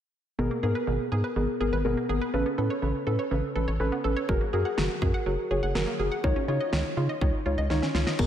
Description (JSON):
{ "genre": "synth-pop", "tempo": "123 BPM", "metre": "4/4", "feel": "straight", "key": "G# dorian", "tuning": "A4 = 440 Hz", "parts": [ { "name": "muted felt-like synth keys", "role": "accompaniment", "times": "0.4-8.3 s", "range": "B3 to C#5", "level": "-28 LUFS", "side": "left 1 dB", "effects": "chorus, slapback echo" }, { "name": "analog pluck", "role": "arpeggios", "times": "0.4-8.3 s", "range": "B2 to F#5", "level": "-33 LUFS", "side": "right 3 dB", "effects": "chorus, tape echo" }, { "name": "rubbery square bass", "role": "bass", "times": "0.4-8.3 s", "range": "F#1 to C#3", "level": "-28 LUFS", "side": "equal", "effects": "none" }, { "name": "pop drum kit", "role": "drums", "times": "4.3-8.3 s", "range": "crash cymbal, kick drum, snare drum", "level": "-29 LUFS", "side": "equal", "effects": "none" } ], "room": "moderate lush hall reverb, RT60 2.5 s", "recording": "big arena sound", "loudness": "-25 LUFS", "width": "side -10 dB against mid", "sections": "0.4-8.2 A section", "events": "drum fill 7.7-8.2", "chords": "0.4 G#madd9; 2.3 Aadd9; 4.3 F#add9; 6.2 C#add9" }